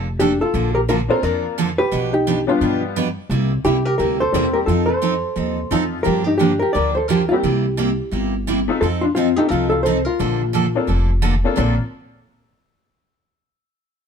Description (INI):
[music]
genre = country, western swing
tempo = 174 BPM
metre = 4/4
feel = swing 62% on 8ths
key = Bb major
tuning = A4 = 438 Hz
[part]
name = picked steel-string acoustic guitar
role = accompaniment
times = 0.0-11.7 s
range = Bb2 to B4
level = -22 LUFS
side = right 3 dB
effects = none
[part]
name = upright bass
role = bass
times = 0.0-11.8 s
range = F1 to G2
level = -23 LUFS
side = equal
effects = none
[part]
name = hollow-body jazz guitar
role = melody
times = 0.2-11.2 s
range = C4 to D5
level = -19 LUFS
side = left 1 dB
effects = none
[part]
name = honky-tonk upright piano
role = accompaniment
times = 1.1-11.8 s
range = F3 to Bb4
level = -23 LUFS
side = left 5 dB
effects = none
[sound]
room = light reverb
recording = band playing live in one room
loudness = -16 LUFS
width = side -6 dB against mid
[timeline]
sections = 0.0-11.6 A section; 11.6-13.0 B section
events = none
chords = 0.0 Bbmaj7; 0.5 Bbmaj9; 1.9 G7/B; 3.3 C7; 4.7 F7; 6.1 Gm7; 7.4 C7; 8.8 F7; 10.2 Bbmaj9